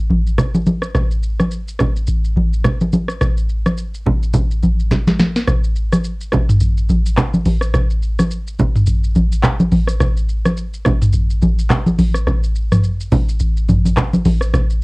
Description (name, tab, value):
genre	afrobeats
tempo	106 BPM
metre	4/4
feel	swing 58% on 16ths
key	none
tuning	none
part	booming analog drum machine	drums	0.1-14.8 s	handclaps, hi-hat, kick drum, rim click, shaker, snare drum, toms	-16 LUFS	equal	vintage 12-bit sampler grit, cassette tape
part	congas	percussion	0.1-14.7 s	none	-16 LUFS	equal	none
room	light reverb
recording	home recording on cassette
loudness	-14 LUFS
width	side -26 dB against mid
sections	0.0-5.5 A section; 5.5-14.8 B section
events	drum fill 4.9-5.5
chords	none